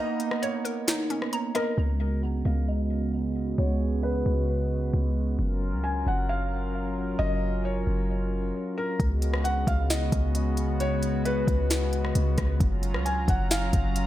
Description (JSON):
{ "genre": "hip hop, atmospheric cloud-rap", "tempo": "133 BPM", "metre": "4/4", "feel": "half-time", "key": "unclear", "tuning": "A4 = 440 Hz", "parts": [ { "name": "felt-muted upright piano", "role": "melody", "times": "0.0-14.1 s", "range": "A#4 to G#5", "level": "-33 LUFS", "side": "left 1 dB", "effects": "low-pass filter, tape echo" }, { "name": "warm analog pad", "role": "sustained chords", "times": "0.0-14.1 s", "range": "C#3 to A#5", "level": "-30 LUFS", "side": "right 2 dB", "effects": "chorus, sidechain pumping, low-pass filter" }, { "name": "hollow square pluck", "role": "arpeggios", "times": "0.0-1.8 s", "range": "C#4 to A#5", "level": "-34 LUFS", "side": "left 2 dB", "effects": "chorus, tape echo" }, { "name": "smooth R&B drum kit", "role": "drums", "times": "0.2-1.7, 9.0-14.1 s", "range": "hi-hat, kick drum, rim click, snare drum", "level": "-28 LUFS", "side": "equal", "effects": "none" }, { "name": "warm 808-style bass", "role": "bass", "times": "1.8-14.1 s", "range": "F#1 to C#2", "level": "-27 LUFS", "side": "equal", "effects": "none" } ], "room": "light reverb", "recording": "none", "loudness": "-24 LUFS", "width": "side -14 dB against mid", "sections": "0.0-1.8 A section; 1.8-9.0 B section; 9.0-14.1 A section", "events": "break 0.0-1.8; filter sweep 1.8-9.0", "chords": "0.0 Bmaj9; 1.8 C#7sus4; 5.4 F#maj7; 9.0 C#7sus4; 12.6 F#maj7", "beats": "0.42 0.88 1.33 | 1.78 2.23 2.68 3.13 | 3.58 4.03 4.49 4.94 | 5.39 5.84 6.29 6.74 | 7.19 7.64 8.09 8.54 | 9.00 9.45 9.90 10.35 | 10.80 11.25 11.70 12.15 | 12.61 13.06 13.51 13.96" }